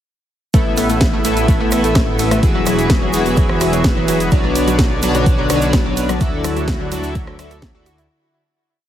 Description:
progressive house; 127 BPM; 4/4; straight; A major; A4 = 439 Hz
warm analog pad; sustained chords; 0.5-8.1 s; D3 to G#4; -23 LUFS; right 2 dB; chorus, sidechain pumping
glassy wavetable pluck; arpeggios; 0.5-8.1 s; F#3 to A5; -23 LUFS; left 2 dB; chorus, sidechain pumping, digital delay
chorused polysynth; stabs; 0.5-8.1 s; A2 to E5; -19 LUFS; left 1 dB; sidechain pumping, digital delay
dark detuned saw bass; bass; 0.5-8.1 s; E1 to D2; -23 LUFS; equal; tube saturation, sidechain pumping
electronic kick drum; drums; 0.5-7.7 s; -16 LUFS; equal
house drum kit; drums; 0.5-8.1 s; hi-hat, ride cymbal, rim click, snare drum; -23 LUFS; right 1 dB
egg shaker; percussion; 0.5-8.1 s; -32 LUFS; right 4 dB
moderate recital hall reverb, RT60 1.5 s, digital ambience; heavily compressed radio sound; -13 LUFS; side -11 dB against mid
0.5-8.1 drop
drop 0.5-8.1; fade-out 5.6-8.1
0.5 Asus2; 2.4 Eadd9; 4.3 Bmadd9; 6.2 Dadd9

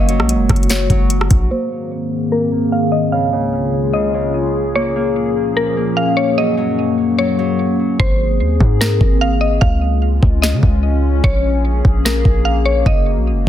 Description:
hip hop, atmospheric cloud-rap; 148 BPM; 4/4; half-time; A4 = 440 Hz
mallet-like synth pluck; melody; 0.0-13.5 s; Bb4 to F5; -21 LUFS; equal; chorus, low-pass filter, tape echo
dark analog pad; sustained chords; 0.0-13.5 s; Db2 to Ab4; -19 LUFS; left 2 dB; chorus, phaser, sidechain pumping, low-pass filter
Celtic harp; arpeggios; 0.0-9.0 s; Db3 to Bb3; -23 LUFS; right 1 dB; low-pass filter, tape echo
warm 808-style bass; bass; 0.0-1.5, 8.0-13.5 s; Gb1 to Db3; -16 LUFS; equal
smooth R&B drum kit; drums; 0.1-1.4, 8.0-13.0 s; hi-hat, kick drum, rim click, snare drum; -15 LUFS; equal; soft clipping on snare
light reverb; dense, heavily limited modern master; -13 LUFS; side -11 dB against mid
0.0-1.5 A section; 1.5-8.0 B section; 8.0-13.5 C section
filter sweep 1.5-8.0; hi-hats muted 8.0-13.5
0.0 Gbadd9; 1.5 Abadd9; 3.1 Db; 4.8 Bbm7; 6.4 Gbadd9; 8.0 Abadd9; 9.6 Db; 11.2 Bbm7; 12.9 Gbadd9

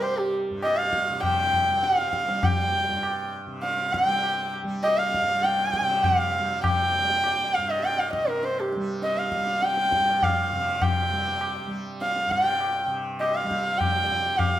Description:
indian classical, Hindustani; 100 BPM; 7/4; straight; A4 = 440 Hz
dark sarangi; melody; 0.0-14.6 s; G4 to G5; -23 LUFS; equal
tanpura; drone; 0.0-14.6 s; G2 to G3; -34 LUFS; right 1 dB
tabla; percussion; 0.0-14.6 s; -30 LUFS; left 2 dB
moderate recital hall reverb, RT60 1.4 s; -22 LUFS; side -12 dB against mid
0.0-14.6 A section

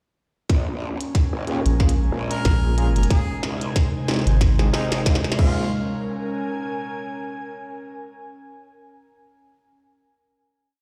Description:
glitch hop; 92 BPM; 4/4; swing 56% on 16ths; Bb minor; A4 = 440 Hz
warbly tape-like pad; sustained chords; 0.5-5.7 s; Bb2 to Eb4; -31 LUFS; equal; chorus, built-in reverb, sidechain pumping
growl bass; bass; 0.5-5.7 s; Ab1 to Eb2; -32 LUFS; equal; distortion, chorus, tube saturation, high-pass filter
electronic kick drum; drums; 0.5-5.5 s; -21 LUFS; equal; overdrive
glitchy drum kit; drums; 0.5-5.5 s; crash cymbal, hi-hat, snare drum; -30 LUFS; equal
airy breathy pad; texture; 0.5-8.3 s; Db4 to Ab5; -34 LUFS; equal; chorus, sidechain pumping
overdriven tine electric piano; stabs; 1.5-5.6 s; Ab3 to Ab4; -32 LUFS; equal; fast tremolo, vintage 12-bit sampler grit, sidechain pumping, low-pass filter, digital delay
rubbery square bass; bass; 1.7-4.7 s; Ab1 to Bb1; -21 LUFS; equal
clear harmonica; melody; 2.3-5.7 s; Eb4 to Bb4; -35 LUFS; equal; digital delay
little or no reverb; played on a big sound system in a bare room, large studio reverb; -22 LUFS; mono
0.5-5.7 build; 5.7-8.3 final note
build-up 0.5-5.7; drum fill 0.5-5.7; filter sweep on tine electric piano 0.5-5.7; filter sweep on ambient pad 0.5-5.7
0.5 Bbm7; 3.1 Ab; 5.4 Bbm7

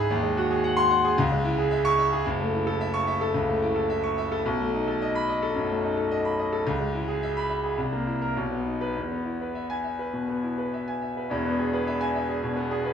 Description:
classical, virtuoso piano study; 98-112 BPM; 4/4; rubato; E major; A4 = 440 Hz
bright concert grand piano; solo; 0.0-12.9 s; E1 to C#6; -24 LUFS; equal
moderate recital hall reverb, RT60 1.4 s; small room ambience; -24 LUFS; side -8 dB against mid
0.0-11.3 A section; 11.3-12.9 A section
0.1 G#7/D#; 1.2 C#m; 2.3 F#m7; 4.4 B7; 6.7 C#m7; 7.8 C7; 8.3 B; 8.9 E

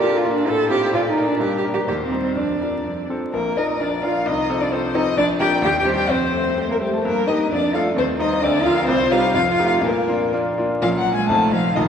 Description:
quick classical-period movement for piano trio; 120-134 BPM; 2/4; rubato; Bb major; A4 = 440 Hz
dark violin; melody; 0.0-11.8 s; G4 to A5; -22 LUFS; left 4 dB
warm cello; second line; 0.0-11.9 s; Eb3 to A4; -21 LUFS; right 2 dB
bright concert grand piano; accompaniment; 0.0-11.9 s; F1 to C5; -22 LUFS; left 1 dB
wet church reverb, RT60 3.5 s; recorded in a church or concert hall, vinyl crackle; -17 LUFS; side -7 dB against mid
0.0-3.3 A section; 3.3-10.8 B section; 10.8-11.9 C section
0.5 F7/A; 0.9 Bb; 1.4 Gm; 1.9 Cm/Eb; 2.4 Bb/F; 2.9 F; 3.3 Bb; 4.3 F/C; 5.2 Bb; 5.6 Cm/Eb; 6.1 F; 7.0 Eb/G; 7.5 Dm/F; 8.0 Cm/Eb; 8.4 Bb/D; 8.9 Cm; 9.3 F9; 9.8 Bb; 10.8 Bbm; 11.3 F7

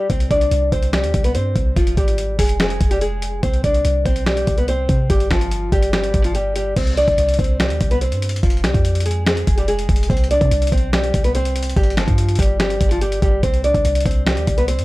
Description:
hip hop, trap; 144 BPM; 4/4; half-time; A4 = 439 Hz
nylon-string guitar; melody; 0.0-14.8 s; F3 to D5; -20 LUFS; equal; low-pass filter
clean 808-style bass; bass; 0.1-14.8 s; F1 to C3; -20 LUFS; equal
dusty soul sampler-style drum kit; drums; 0.1-14.8 s; crash cymbal, finger snaps, hi-hat, kick drum, snare drum; -19 LUFS; equal
little or no reverb; -15 LUFS; side -19 dB against mid
0.0-6.8 A section; 6.8-14.8 B section
0.1 C5; 1.8 Fm; 3.4 C5; 5.1 Fsus2/G; 6.8 C5; 8.4 Fm; 10.1 C5; 11.8 Fsus2/G; 13.4 C5

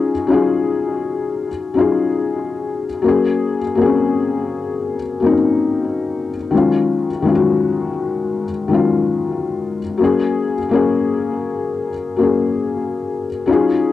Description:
hip hop; 69 BPM; 4/4; swing 65% on 16ths; A4 = 440 Hz
felt-muted upright piano; solo; 0.0-13.9 s; Eb3 to Ab4; -16 LUFS; left 4 dB; cassette tape, tape echo
moderate booth ambience, RT60 0.2 s; home recording on cassette; -16 LUFS; side -13 dB against mid
0.0-13.9 A section
0.0 Ebm11; 3.0 Ab9sus4; 6.5 Ebm11; 10.0 Ab9sus4

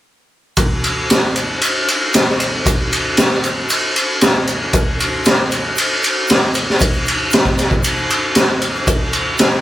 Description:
rock; 116 BPM; 4/4; straight
raw garage drum kit; drums; 0.6-9.5 s; kick drum, ride cymbal, snare drum; -13 LUFS; equal
tube shaker; percussion; 0.6-9.5 s; -30 LUFS; right 5 dB
light reverb; band playing live in one room; -13 LUFS; side -14 dB against mid
0.6-9.6 A section

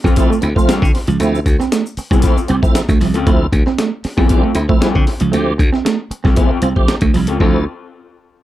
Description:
funk; 116 BPM; 4/4; straight; D minor; A4 = 438 Hz
electric guitar at the edge of break-up; accompaniment; 0.0-7.6 s; C4 to A4; -21 LUFS; left 6 dB; spring reverb
electric guitar through a small old amp; riff; 0.0-7.6 s; F3 to C4; -19 LUFS; right 6 dB
glassy slap bass; bass; 0.0-7.6 s; C2 to D3; -17 LUFS; equal
breakbeat sampler-style drum kit; drums; 0.0-7.5 s; hi-hat, kick drum, snare drum; -15 LUFS; equal
tube shaker; percussion; 0.1-3.3 s; -37 LUFS; left 4 dB
tonewheel organ; stabs; 0.2-7.6 s; F3 to G4; -20 LUFS; right 2 dB; chorus vibrato, slow rotary speaker
light reverb; dark, warm production; -12 LUFS; side -14 dB against mid
0.0-7.4 A section; 7.4-8.4 B section
0.0 Dm7

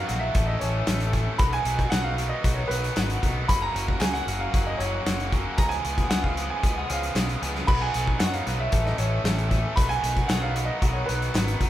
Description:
indie rock; 114 BPM; 4/4; straight; B lydian; A4 = 440 Hz
clear upright piano; melody; 0.0-11.6 s; B4 to B5; -29 LUFS; right 1 dB
biting overdriven guitar; riff; 0.0-11.7 s; F#2 to A4; -33 LUFS; right 6 dB
crunchy overdriven guitar; riff; 0.0-11.7 s; D#3 to A4; -32 LUFS; left 6 dB; spring reverb
growling fingered electric bass; bass; 0.1-11.7 s; E#1 to F#2; -28 LUFS; equal; overdrive
loose indie drum kit; drums; 0.1-11.7 s; crash cymbal, hi-hat, kick drum, snare drum; -26 LUFS; equal
group handclap; percussion; 0.9-11.5 s; -41 LUFS; left 2 dB
metallic FM bell; second line; 6.8-11.6 s; F#4 to F#5; -44 LUFS; right 1 dB
moderate large studio reverb, RT60 1.2 s; band playing live in one room; -22 LUFS; side -13 dB against mid
0.0-11.7 A section
0.3 A; 1.4 B; 3.5 F#; 5.6 C#7; 7.7 B; 8.7 A; 9.8 B

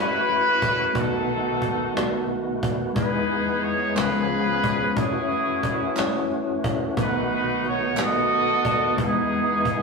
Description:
slow gospel; 60 BPM (dotted quarters); 6/8; straight; A4 = 439 Hz
clear horn section; melody; 0.0-9.8 s; B3 to D#5; -23 LUFS; equal; tape echo
mellow tine electric piano; accompaniment; 0.0-9.8 s; B1 to C#5; -27 LUFS; left 2 dB; medium stereo tremolo
percussive tonewheel organ; sustained chords; 0.0-9.8 s; D#3 to C#5; -29 LUFS; equal; slow rotary speaker, overdrive, chorus vibrato
cajon; drums; 0.3-9.8 s; -29 LUFS; equal
group handclap; percussion; 4.0-8.3 s; -34 LUFS; right 3 dB
wet stone room reverb, RT60 1.2 s; rough rehearsal-room recording, tube saturation; -21 LUFS; side -4 dB against mid
0.0-9.8 A section
0.0 F#m7; 1.0 B7; 3.0 Emaj7; 4.0 C#7; 5.0 F#m7; 7.0 B7; 9.0 Emaj7

